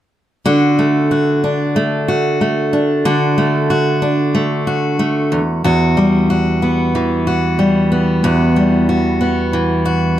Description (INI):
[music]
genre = pop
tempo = 92 BPM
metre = 4/4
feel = swing 55% on 16ths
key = D major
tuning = A4 = 439 Hz
[part]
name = picked steel-string acoustic guitar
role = accompaniment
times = 0.5-10.2 s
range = E2 to F#4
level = -13 LUFS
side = equal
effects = none
[sound]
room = light reverb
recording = close, detailed microphones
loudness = -13 LUFS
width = side -12 dB against mid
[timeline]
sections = 0.5-10.2 A section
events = none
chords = 0.5 D; 5.3 Emadd9